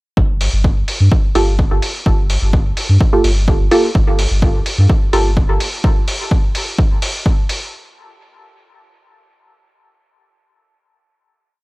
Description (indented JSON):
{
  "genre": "dub techno",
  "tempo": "127 BPM",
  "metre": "4/4",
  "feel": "straight",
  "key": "G minor",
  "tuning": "A4 = 440 Hz",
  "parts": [
    { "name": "pure sine sub bass", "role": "bass", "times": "0.2-5.6 s", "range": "G1 to G2", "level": "-15 LUFS", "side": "equal", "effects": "sidechain pumping" },
    { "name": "electronic kick drum", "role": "drums", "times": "0.2-7.4 s", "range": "none", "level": "-14 LUFS", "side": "equal", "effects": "studio reverb" },
    { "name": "electronic hi-hat", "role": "drums", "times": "0.4-7.6 s", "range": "none", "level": "-24 LUFS", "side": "equal", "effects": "studio reverb" },
    { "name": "filtered dub chord stab", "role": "stabs", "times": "1.4-5.3 s", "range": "Bb3 to A4", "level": "-18 LUFS", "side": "right 1 dB", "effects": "chorus, phaser, sidechain pumping, dub echo" }
  ],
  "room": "little or no reverb",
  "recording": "dry, gritty hardware recording",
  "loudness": "-12 LUFS",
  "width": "side -21 dB against mid",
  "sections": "0.2-7.7 groove",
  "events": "filter sweep on synth stab 0.2-5.8",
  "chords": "none"
}